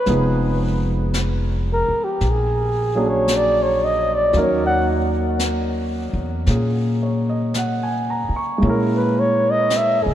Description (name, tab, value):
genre	jazz ballad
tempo	56 BPM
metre	4/4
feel	swing 69% on 8ths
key	unclear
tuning	A4 = 440 Hz
part	breathy flugelhorn	melody	0.0-10.1 s	G4 to F#5	-20 LUFS	equal	none
part	warm grand piano	accompaniment	0.0-10.1 s	F3 to C#6	-22 LUFS	right 1 dB	none
part	upright bass	bass	0.1-10.1 s	F1 to C#3	-22 LUFS	equal	none
part	jazz brush drum kit	drums	0.1-10.1 s	brushed snare drum, hi-hat, snare drum	-32 LUFS	left 1 dB	none
room	moderate cathedral reverb, RT60 5.7 s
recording	in a vast, echoing space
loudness	-17 LUFS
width	side -11 dB against mid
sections	0.0-10.1 A section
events	flugelhorn solo 0.0-10.1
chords	0.1 Fm7b5; 2.2 A#7alt; 4.3 D#m7; 8.6 A#m7b5